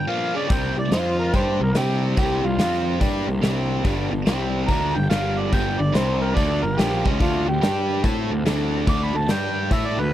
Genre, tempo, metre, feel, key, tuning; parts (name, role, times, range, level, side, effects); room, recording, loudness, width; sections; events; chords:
blues rock power trio and southern rock; 143 BPM; 4/4; swing 64% on 8ths; A4 = 439 Hz
overdriven harmonica; melody; 0.0-10.1 s; F4 to D6; -25 LUFS; right 1 dB; slapback echo
tonewheel organ; sustained chords; 0.0-10.1 s; G2 to D5; -35 LUFS; right 5 dB
biting overdriven guitar; riff; 0.0-10.1 s; G2 to A4; -25 LUFS; equal
fuzz picked electric bass; bass; 0.5-10.1 s; G1 to A2; -25 LUFS; equal; overdrive
huge arena drum kit; drums; 0.5-9.8 s; hi-hat, kick drum, snare drum; -24 LUFS; equal
little or no reverb; -19 LUFS; side -12 dB against mid
0.0-10.1 A section
0.5 C7; 0.9 F5; 1.3 C7; 2.6 F5; 3.0 C7; 3.8 G7; 4.3 C5; 4.7 G7; 5.9 C5; 6.4 G7; 7.2 D7; 7.6 G5; 8.0 D7; 9.3 G5